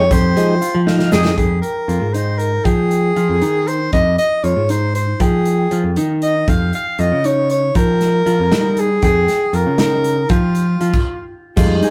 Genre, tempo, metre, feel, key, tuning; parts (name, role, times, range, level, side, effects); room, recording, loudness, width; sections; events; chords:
progressive instrumental, band music in an uneven meter; 236 BPM (eighths); 5/8; straight; F minor; A4 = 440 Hz
bright soprano saxophone; melody; 0.0-11.3 s; F4 to F5; -20 LUFS; equal
tonewheel organ; accompaniment; 0.0-1.4, 11.6-11.9 s; G3 to F5; -21 LUFS; equal; slow rotary speaker
modern bright picked electric bass; bass; 0.0-11.8 s; F2 to G3; -19 LUFS; equal
mellow electric guitar; arpeggios; 0.1-11.9 s; Eb4 to G5; -28 LUFS; equal; spring reverb
natural country drum kit; drums; 0.1-11.9 s; crash cymbal, hi-hat, kick drum, snare drum; -22 LUFS; equal
egg shaker; percussion; 0.1-1.4, 11.6-11.8 s; -40 LUFS; equal
moderate studio reverb, RT60 0.5 s; rough rehearsal-room recording; -16 LUFS; mono
0.0-1.4 A section; 1.4-11.6 B section
tonewheel organ fill 0.6-1.4; drum fill 0.9-1.4; stop 10.9-11.6
0.1 Fm7; 6.5 Bbm/F